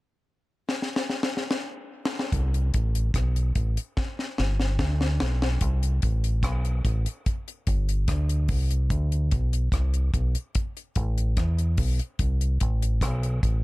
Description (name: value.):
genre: dub reggae.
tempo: 73 BPM.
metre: 4/4.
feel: straight.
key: unclear.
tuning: A4 = 441 Hz.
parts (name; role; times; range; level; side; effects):
deep reggae drum kit; drums; 0.7-13.6 s; hi-hat, kick drum, rim click, snare drum; -27 LUFS; equal; none.
deep dub fingered electric bass; bass; 2.3-13.6 s; G1 to E2; -24 LUFS; equal; none.
room: little or no reverb.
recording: none.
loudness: -23 LUFS.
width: side -20 dB against mid.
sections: 0.0-2.3 A section; 2.3-5.6 B section; 5.6-13.6 C section.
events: drum fill 0.7-2.3, 4.0-5.6.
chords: none.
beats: 0.68 1.50 | 2.33 3.15 3.97 4.79 | 5.62 6.44 7.26 8.08 | 8.91 9.73 10.55 11.38 | 12.20 13.02.